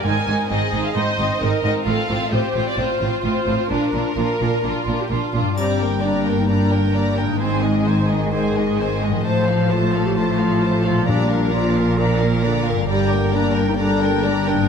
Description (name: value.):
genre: cinematic, heroic adventure film score.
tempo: 131 BPM.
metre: 4/4.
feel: straight.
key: Bb major.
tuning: A4 = 439 Hz.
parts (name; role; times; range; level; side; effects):
rich symphonic violin section; melody; 0.0-14.7 s; Bb4 to Bb5; -26 LUFS; left 2 dB; none.
rich studio violin section; second line; 0.0-14.7 s; C4 to D5; -27 LUFS; equal; none.
rich symphonic viola section; accompaniment; 0.0-14.7 s; F3 to C5; -27 LUFS; right 2 dB; none.
rich studio cello section; bass; 0.0-14.7 s; G2 to Bb2; -24 LUFS; right 1 dB; none.
warm symphonic double bass section; bass; 0.1-14.7 s; G1 to Bb1; -24 LUFS; right 4 dB; none.
concert harp; arpeggios; 5.4-14.7 s; G2 to D5; -26 LUFS; left 7 dB; none.
mellow clarinet; second line; 5.6-14.7 s; C4 to C5; -24 LUFS; left 2 dB; none.
dark French horn section; sustained chords; 5.6-14.7 s; D3 to A4; -25 LUFS; left 3 dB; none.
triangle; percussion; 5.6-6.5 s; none; -42 LUFS; right 1 dB; none.
timpani; percussion; 11.1-11.7 s; Bb2; -25 LUFS; equal; none.
room: moderate scoring stage reverb, RT60 1.9 s.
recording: none.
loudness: -17 LUFS.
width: side -6 dB against mid.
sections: 0.0-5.6 A section; 5.6-14.7 A section.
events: none.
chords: 0.1 Ab; 1.9 F/A; 3.7 Bb; 5.6 Gm; 7.4 Ab; 9.3 F/A; 11.1 Bb; 12.9 Gm.